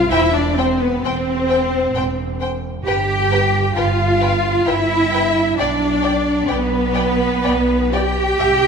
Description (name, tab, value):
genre	classical, slow romantic movement for string orchestra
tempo	66 BPM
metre	3/4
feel	rubato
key	unclear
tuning	A4 = 439 Hz
part	rich symphonic violin section	melody	0.0-8.7 s	B4 to G5	-23 LUFS	left 5 dB	none
part	rich symphonic viola section	accompaniment	0.0-8.7 s	B3 to G4	-21 LUFS	right 1 dB	none
part	rich studio cello section	bass	0.0-8.7 s	B3 to G4	-20 LUFS	right 1 dB	none
part	dark symphonic violin section	second line	0.1-8.5 s	B4 to G5	-25 LUFS	left 3 dB	none
part	rich symphonic double bass section	bass	0.1-8.7 s	E1 to C2	-22 LUFS	right 2 dB	none
room	wet scoring stage reverb, RT60 1.7 s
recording	minimal, uncompressed stereo recording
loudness	-15 LUFS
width	side -6 dB against mid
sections	0.0-8.7 A section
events	none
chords	0.1 C/E; 2.9 N.C.; 5.6 G/B